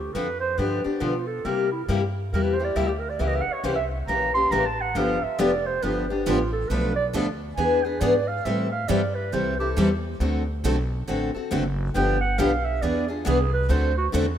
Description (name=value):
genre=acoustic string swing (jazz manouche)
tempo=137 BPM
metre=4/4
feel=swing 62% on 8ths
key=G mixolydian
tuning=A4 = 440 Hz
part: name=breathy clarinet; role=second line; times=0.0-14.1 s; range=D4 to C6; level=-27 LUFS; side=right 4 dB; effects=none
part: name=upright bass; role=bass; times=0.0-14.4 s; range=F1 to C3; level=-27 LUFS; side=equal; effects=none
part: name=picked steel-string acoustic guitar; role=accompaniment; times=0.1-14.3 s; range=B2 to A4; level=-26 LUFS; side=left 4 dB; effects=none
part: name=picked steel-string acoustic guitar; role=accompaniment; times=5.0-14.3 s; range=B2 to B4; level=-30 LUFS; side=right 6 dB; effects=none
room=moderate lush hall reverb, RT60 2.5 s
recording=rough home demo mix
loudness=-22 LUFS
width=side -10 dB against mid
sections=0.0-14.4 A section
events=clarinet solo 0.0-14.4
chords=0.0 Dm7; 0.6 G7; 1.5 C7; 3.2 C#dim7; 5.0 G7; 6.7 Bm7b5; 7.6 E7; 8.5 Am7; 10.2 D7; 12.0 G7; 12.8 E7; 13.7 D7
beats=0.15 0.59 1.02 | 1.46 1.90 2.33 2.77 | 3.21 3.65 4.08 4.52 | 4.96 5.39 5.83 6.27 | 6.71 7.14 7.58 8.02 | 8.45 8.89 9.33 9.77 | 10.20 10.64 11.08 11.52 | 11.95 12.39 12.83 13.27 | 13.70 14.14